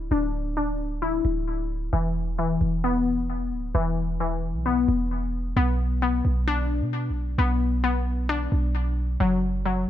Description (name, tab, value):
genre	hip hop, trap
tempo	132 BPM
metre	4/4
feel	half-time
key	B minor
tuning	A4 = 439 Hz
part	glassy wavetable pluck	arpeggios	0.0-9.9 s	E3 to E4	-26 LUFS	left 4 dB	chorus, low-pass filter, digital delay
part	warm 808-style bass	bass	0.0-9.9 s	D1 to B2	-26 LUFS	right 1 dB	none
room	light reverb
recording	none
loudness	-23 LUFS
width	side -11 dB against mid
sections	0.0-9.9 A section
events	filter sweep on synth pluck 0.0-5.6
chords	0.0 Dsus2; 1.9 E5; 5.6 Bm; 9.2 N.C.